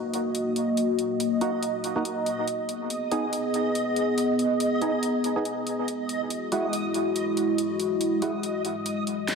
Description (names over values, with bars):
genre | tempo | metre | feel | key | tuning
deep dubstep | 141 BPM | 4/4 | swing 56% on 16ths, half-time | unclear | A4 = 441 Hz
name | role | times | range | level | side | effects
dark analog pad | sustained chords | 0.0-9.3 s | G#3 to D#5 | -26 LUFS | left 1 dB | chorus, phaser
backwards swelling texture | texture | 0.0-9.3 s | D#5 | -32 LUFS | right 2 dB | built-in reverb, ensemble chorus
deep house drum kit | drums | 0.1-9.3 s | hi-hat, snare drum | -33 LUFS | equal | high-pass filter on hats, high-pass filter on cymbals, high-pass filter on snare
percussive organ stab | stabs | 1.4-8.3 s | G#3 to G#4 | -32 LUFS | right 2 dB | lush chorus, dub echo
room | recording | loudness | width
wet plate reverb, RT60 1.9 s, digital ambience | dreamy mix soaked in reverb | -24 LUFS | side -5 dB against mid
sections
0.0-9.3 A section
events
none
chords
0.0 D#m; 2.5 G#m; 5.9 Eadd9